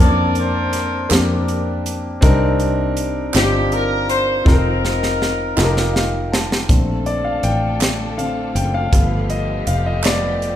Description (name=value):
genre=slow gospel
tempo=54 BPM (dotted quarters)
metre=6/8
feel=straight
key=Bb major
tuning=A4 = 442 Hz
part: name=warm horn section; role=melody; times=0.0-6.3 s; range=D4 to D5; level=-21 LUFS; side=left 1 dB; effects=none
part: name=warm concert grand piano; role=accompaniment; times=0.0-10.6 s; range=C3 to A5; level=-21 LUFS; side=left 1 dB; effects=none
part: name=fingered electric bass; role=bass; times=0.0-10.6 s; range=F1 to F2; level=-21 LUFS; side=equal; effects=none
part: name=crisp fusion drum kit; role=drums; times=0.4-10.6 s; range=hi-hat, kick drum, snare drum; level=-18 LUFS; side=equal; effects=none
part: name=group handclap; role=percussion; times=1.1-10.4 s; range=none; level=-28 LUFS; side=right 6 dB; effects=none
part: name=warm studio string section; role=sustained chords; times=6.7-10.6 s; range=D3 to A4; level=-29 LUFS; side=left 1 dB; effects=none
room=moderate recital hall reverb, RT60 1.6 s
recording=recorded in a church or concert hall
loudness=-15 LUFS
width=side -11 dB against mid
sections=0.0-6.7 A section; 6.7-10.6 B section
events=drum fill 4.5-6.7; grand piano fill 5.6-6.7; grand piano solo 6.7-10.6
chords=0.0 Bbmaj9/F; 2.2 Cm9; 4.5 F7sus4; 5.6 F9sus4; 6.7 Bbmaj7; 8.9 G7